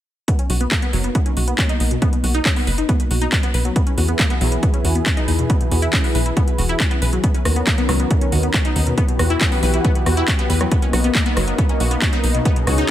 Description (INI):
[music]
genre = uplifting trance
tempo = 138 BPM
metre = 4/4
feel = straight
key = B major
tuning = A4 = 440 Hz
[part]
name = analog string pad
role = sustained chords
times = 0.3-12.9 s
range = C#3 to B4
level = -25 LUFS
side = left 1 dB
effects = ensemble chorus, sidechain pumping
[part]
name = wide unison pluck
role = arpeggios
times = 0.3-12.8 s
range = B2 to B4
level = -24 LUFS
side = left 1 dB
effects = phaser, sidechain pumping, tape echo
[part]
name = electronic kick drum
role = drums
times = 0.3-12.5 s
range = none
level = -19 LUFS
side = equal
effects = overdrive
[part]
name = house drum kit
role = drums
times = 0.3-12.9 s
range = handclaps, hi-hat, rim click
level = -23 LUFS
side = equal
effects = overdrive
[part]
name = tight sequencer bass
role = bass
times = 0.5-12.8 s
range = E1 to E2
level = -19 LUFS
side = equal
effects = tube saturation, sidechain pumping
[sound]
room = digital ambience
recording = none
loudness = -16 LUFS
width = side -12 dB against mid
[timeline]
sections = 0.3-12.9 A section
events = filter sweep on synth pluck 0.3-12.9; filter sweep on analog synth pad 0.3-12.9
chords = 0.3 Bmaj7; 3.8 E; 7.2 Bmaj7; 9.0 Emadd9; 10.7 Bmaj7